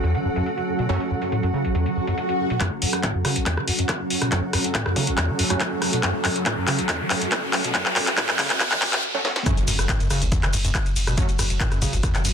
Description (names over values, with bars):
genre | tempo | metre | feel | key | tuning
driving peak-time techno | 140 BPM | 4/4 | straight | F# minor | A4 = 438 Hz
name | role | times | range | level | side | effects
overdriven acid bass | riff | 0.0-12.3 s | F#1 to F#3 | -26 LUFS | equal | lush chorus, sidechain pumping, digital delay
swarming drone | drone | 0.0-12.3 s | F#3 to F#4 | -30 LUFS | right 3 dB | built-in reverb, sidechain pumping
techno drum kit | drums | 0.0-12.3 s | handclaps, hi-hat, ride cymbal, rim click, shaker, snare drum | -24 LUFS | left 1 dB | low-pass filter on hats, soft clipping on snare, low-pass filter on snare, low-pass filter on perc, low-pass filter on cymbals, low-pass filter on room
granular cloud pad | texture | 0.0-9.0 s | C#4 to F#5 | -30 LUFS | equal | built-in reverb, sidechain pumping
rave stab | stabs | 0.9-6.1, 9.1-11.3 s | F#3 to C#4 | -30 LUFS | right 2 dB | chorus, built-in reverb, sidechain pumping, digital delay
swell, riser and impact | sound effects | 1.9-11.2 s | none | -30 LUFS | left 1 dB | none
electronic kick drum | drums | 2.6-12.1 s | none | -26 LUFS | equal | high-pass filter on kick, high-pass filter on room
saturated sub bass | bass | 9.6-12.3 s | F#1 | -26 LUFS | equal | tube saturation, sidechain pumping, low-pass filter
room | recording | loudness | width
light reverb | dense, heavily limited modern master, high-pass filter | -20 LUFS | side -7 dB against mid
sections
0.0-2.6 A section; 2.6-9.5 B section; 9.5-12.3 C section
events
filter sweep on acid bass 0.0-2.6, 2.6-9.5; swell 1.9-2.6; build-up 2.6-9.5; drum fill 2.6-9.0, 9.2; filter sweep on synth stab 2.6-9.5; filter sweep 2.6-9.5; riser 4.5-9.0; break 9.0-9.5; drop 9.5-12.3; impact 9.5-11.2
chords
0.0 F#m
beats
0.03 0.46 | 0.89 1.32 1.75 2.18 | 2.61 3.03 3.46 3.89 | 4.32 4.75 5.18 5.61 | 6.03 6.46 6.89 7.32 | 7.75 8.18 8.61 9.03 | 9.46 9.89 10.32 10.75 | 11.18 11.61 12.03